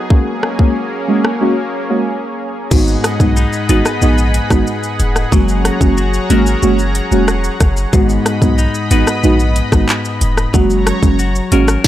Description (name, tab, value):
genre	dancehall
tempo	92 BPM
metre	4/4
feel	straight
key	G# minor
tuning	A4 = 440 Hz
part	lush unison pad	sustained chords	0.0-11.8 s	F#3 to B5	-21 LUFS	equal	chorus, sidechain pumping
part	deep mellow chord stab	accompaniment	0.1-11.7 s	G#3 to F#4	-16 LUFS	right 1 dB	chorus
part	island pop drum kit	drums	0.1-11.9 s	crash cymbal, handclaps, hi-hat, kick drum, rim click, shaker, snare drum	-15 LUFS	equal	none
part	clean electric guitar	arpeggios	2.7-11.9 s	G#2 to B4	-20 LUFS	left 4 dB	none
part	warm 808-style bass	bass	2.7-11.8 s	E1 to B1	-15 LUFS	equal	none
room	digital ambience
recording	dark, warm production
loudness	-11 LUFS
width	side -13 dB against mid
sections	0.0-2.7 A section; 2.7-11.9 B section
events	break 1.4-2.7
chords	0.1 F#add9; 2.7 G#m7; 5.3 F#add9; 7.9 G#m7; 10.5 F#add9